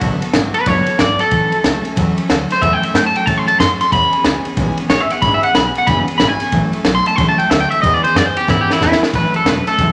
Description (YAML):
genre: rockabilly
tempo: 184 BPM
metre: 4/4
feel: swing 63% on 8ths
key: A major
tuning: A4 = 436 Hz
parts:
  - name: electric guitar at the edge of break-up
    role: melody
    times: 0.0-9.9 s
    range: E4 to C6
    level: -17 LUFS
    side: equal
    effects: none
  - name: picked steel-string acoustic guitar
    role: accompaniment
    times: 0.0-9.9 s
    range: A2 to A4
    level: -23 LUFS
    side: equal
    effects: none
  - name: upright bass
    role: bass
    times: 0.0-9.9 s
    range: E1 to A2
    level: -25 LUFS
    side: equal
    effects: none
  - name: compact cocktail drum kit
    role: drums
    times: 0.0-9.9 s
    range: kick drum, ride cymbal, snare drum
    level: -20 LUFS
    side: equal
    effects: none
room: moderate large studio reverb, RT60 1.3 s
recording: none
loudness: -15 LUFS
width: mono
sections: 0.0-9.1 A section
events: clean electric guitar solo 0.0-9.1; drum fill 8.5-9.1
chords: 0.0 D6; 1.3 A6; 3.9 E6; 6.5 A6; 7.8 E6; 9.1 A6